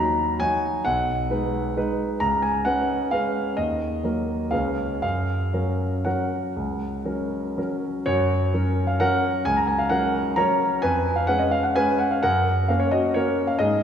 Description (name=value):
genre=classical, piano waltz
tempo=112-141 BPM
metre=3/4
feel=rubato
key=F# major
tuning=A4 = 440 Hz
part: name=warm concert grand piano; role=solo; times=0.0-13.8 s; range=B1 to B5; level=-21 LUFS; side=equal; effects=none
room=wet church reverb, RT60 2.6 s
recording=recorded in a church or concert hall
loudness=-21 LUFS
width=side -8 dB against mid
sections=0.0-8.1 A section; 8.1-13.8 A section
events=none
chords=0.0 D#m; 0.9 G#m7/B; 2.2 C#7; 3.6 D#m; 4.5 C#7; 5.0 F#; 10.8 C#7/E#; 12.2 F#